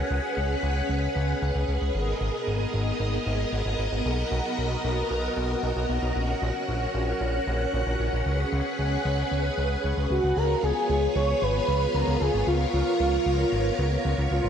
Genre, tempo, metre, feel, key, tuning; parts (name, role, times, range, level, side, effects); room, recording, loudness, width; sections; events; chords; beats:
synthwave; 114 BPM; 4/4; straight; A4 = 441 Hz
string machine, full ensemble; sustained chords; 0.0-14.5 s; B3 to F#5; -28 LUFS; equal; phaser, ensemble chorus
fat analog bass; bass; 0.0-14.5 s; G#1 to C#2; -27 LUFS; equal
expressive synth lead; melody; 10.1-14.5 s; E#4 to C#5; -25 LUFS; equal; ensemble chorus, ping-pong delay
moderate lush hall reverb, RT60 2.7 s; bright 1980s-style digital production; -23 LUFS; side -8 dB against mid
0.0-10.4 A section; 10.4-14.5 B section
0.0 C#7sus4; 1.9 G#madd9; 4.1 Bmaj7; 6.2 F#/A#; 8.3 C#7sus4; 10.4 C#7
0.37 0.89 1.42 | 1.95 2.47 3.00 3.53 | 4.05 4.58 5.11 5.63 | 6.16 6.68 7.21 7.74 | 8.26 8.79 9.31 9.84 | 10.37 10.89 11.42 11.95 | 12.47 13.00 13.53 14.05